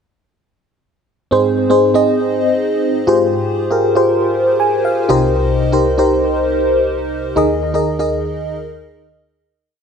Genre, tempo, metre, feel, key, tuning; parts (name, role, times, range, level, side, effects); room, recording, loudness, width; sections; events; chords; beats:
pop; 119 BPM; 4/4; straight; Ab major; A4 = 437 Hz
FM electric piano with soft pad layer; solo; 1.3-9.4 s; C2 to Ab5; -13 LUFS; equal; chorus, phaser, tape echo
moderate plate reverb, RT60 2.8 s; -13 LUFS; side -6 dB against mid
1.3-9.4 verse
FM electric piano fill 4.3-5.4; fade-out 7.4-9.4
1.3 Ab; 3.1 Fmadd9/Ab; 5.1 Cm7; 7.4 Ebsus4
| 1.32 1.82 2.33 2.83 | 3.34 3.84 4.35 4.85 | 5.36 5.86 6.36 6.87 | 7.37 7.88 8.38 8.88